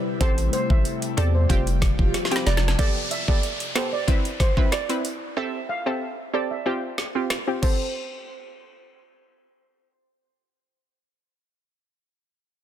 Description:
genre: dancehall.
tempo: 93 BPM.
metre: 4/4.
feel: straight.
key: A minor.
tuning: A4 = 440 Hz.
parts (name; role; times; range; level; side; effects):
steel pan; melody; 0.0-9.8 s; C5 to F5; -30 LUFS; right 3 dB; low-pass filter, ping-pong delay.
airy breathy pad; sustained chords; 0.0-2.8 s; C3 to B4; -30 LUFS; left 4 dB; chorus, phaser, sidechain pumping.
analog pluck; accompaniment; 0.2-12.0 s; B3 to B4; -28 LUFS; right 1 dB; chorus, sidechain pumping, low-pass filter.
punchy sub bass; bass; 0.2-2.8 s; F1 to E2; -22 LUFS; equal; none.
island pop drum kit; drums; 0.2-7.8 s; crash cymbal, hi-hat, kick drum, rim click, snare drum; -23 LUFS; equal; none.
downlifter; sound effects; 2.8-8.0 s; none; -34 LUFS; equal; none.
room: digital ambience.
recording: dense, heavily limited modern master.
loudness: -21 LUFS.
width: side -10 dB against mid.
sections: 0.0-2.8 A section; 2.8-7.9 B section; 7.9-10.5 C section.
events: drum fill 2.1-2.8.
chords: 0.2 Am7; 1.5 Fsus2; 2.8 Gadd9; 4.1 Cmaj7; 5.4 Am7; 6.7 Fsus2; 7.6 Am7.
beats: | 0.21 0.85 1.50 2.14 | 2.79 3.43 4.08 4.72 | 5.37 6.01 6.66 7.30 | 7.95 8.60 9.24 9.88.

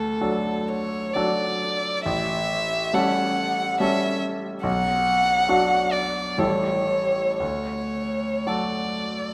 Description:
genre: classical, romantic duo for violin and grand piano.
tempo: 55-72 BPM.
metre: 3/4.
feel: rubato.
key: D major.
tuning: A4 = 440 Hz.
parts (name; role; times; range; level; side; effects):
rich violin; melody; 0.0-9.3 s; A4 to F#5; -26 LUFS; equal; none.
bright grand piano; accompaniment; 0.0-9.3 s; A1 to A4; -28 LUFS; equal; none.
room: wet scoring stage reverb, RT60 1.7 s.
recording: lossy compression artefacts.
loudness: -24 LUFS.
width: mono.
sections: 0.0-9.3 A section.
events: none.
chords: 0.0 D; 2.1 A7; 4.6 Bm; 6.4 A7; 7.4 D.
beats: 0.21 1.15 | 2.06 2.94 3.80 | 4.64 5.49 6.39 | 7.40 8.48.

